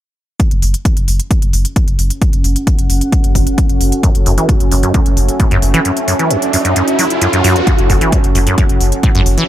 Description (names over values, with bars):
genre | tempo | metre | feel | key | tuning
driving peak-time techno | 132 BPM | 4/4 | straight | F# minor | A4 = 440 Hz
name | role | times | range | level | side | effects
electronic hi-hat | drums | 0.4-9.5 s | none | -21 LUFS | equal | overdrive, sidechain pumping on hats
electronic kick drum | drums | 0.4-9.1 s | none | -13 LUFS | equal | overdrive
deep dark ambient pad | texture | 2.1-9.5 s | C#4 to F#5 | -18 LUFS | right 1 dB | chorus, built-in reverb, sidechain pumping
saturated sub bass | bass | 0.5-9.4 s | F#1 | -15 LUFS | equal | overdrive, sidechain pumping, low-pass filter
acid bass, saw | riff | 4.0-9.4 s | E2 to F#3 | -16 LUFS | equal | lush chorus, sidechain pumping, dub echo
riser | sound effects | 5.0-7.7 s | none | -21 LUFS | equal | none
room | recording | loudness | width
little or no reverb | none | -10 LUFS | side -13 dB against mid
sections
0.4-7.7 A section; 7.7-9.5 B section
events
riser 5.0-7.7; kick drops out 5.9-7.7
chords
0.4 F#m